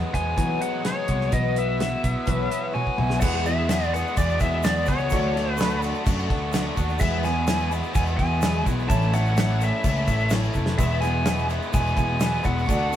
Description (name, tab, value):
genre	folk rock and heartland rock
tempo	127 BPM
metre	4/4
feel	straight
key	E mixolydian from 3.2 s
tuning	A4 = 440 Hz
part	picked steel-string acoustic guitar	accompaniment	0.0-13.0 s	A2 to B4	-31 LUFS	left 5 dB	none
part	biting overdriven guitar	riff	0.0-13.0 s	E2 to G#4	-29 LUFS	right 1 dB	none
part	biting lead guitar	melody	0.1-13.0 s	C#5 to A5	-27 LUFS	equal	overdrive
part	picked electric bass	bass	0.1-13.0 s	E1 to E3	-26 LUFS	equal	none
part	damped 70s drum kit	drums	0.1-12.8 s	crash cymbal, hi-hat, kick drum, snare drum, toms	-26 LUFS	equal	none
part	clean lap steel guitar	second line	2.3-3.2 s	B4 to E5	-36 LUFS	right 3 dB	none
part	bright upright piano	accompaniment	3.2-13.0 s	D4 to E5	-37 LUFS	right 2 dB	none
part	tube shaker	percussion	3.2-13.0 s	none	-43 LUFS	right 8 dB	none
room	moderate stone room reverb, RT60 1.2 s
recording	band playing live in one room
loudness	-21 LUFS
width	side -11 dB against mid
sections	0.0-3.2 A section; 3.2-13.0 B section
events	drum fill 2.7-3.2, 10.5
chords	0.0 Eadd9; 1.3 Bsus4; 3.2 E; 5.1 D; 7.0 E; 8.9 A; 10.8 E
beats	0.37 0.84 | 1.32 1.80 2.27 2.75 | 3.22 3.70 4.17 4.64 | 5.12 5.59 6.06 6.53 | 7.01 7.48 7.95 8.42 | 8.90 9.37 9.84 10.31 | 10.79 11.26 11.73 12.20 | 12.68